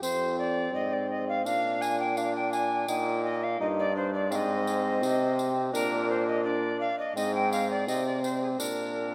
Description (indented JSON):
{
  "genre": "classical, renaissance-style consort dance",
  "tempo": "84 BPM",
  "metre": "4/4",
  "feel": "straight",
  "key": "Bb mixolydian",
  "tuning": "A4 = 436 Hz",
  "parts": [
    { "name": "alto recorder", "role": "melody", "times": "0.0-9.1 s", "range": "Ab4 to Ab5", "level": "-32 LUFS", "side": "equal", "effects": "none" },
    { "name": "warm bassoon", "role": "accompaniment", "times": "0.0-9.1 s", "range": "C4 to Eb4", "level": "-34 LUFS", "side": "equal", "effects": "none" },
    { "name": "clear trombone", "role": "bass", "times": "0.0-9.1 s", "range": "F2 to C3", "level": "-34 LUFS", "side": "equal", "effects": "none" },
    { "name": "tambourine", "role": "percussion", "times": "0.0-8.9 s", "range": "none", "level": "-44 LUFS", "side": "equal", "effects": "none" }
  ],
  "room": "wet church reverb, RT60 2.7 s",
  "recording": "none",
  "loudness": "-28 LUFS",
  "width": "mono",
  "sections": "0.0-9.1 A section",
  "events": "none",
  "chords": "0.0 Fm; 1.5 Bb; 2.9 Eb/Bb; 4.3 Ab; 5.7 Bb; 7.2 Ab; 8.6 Bb"
}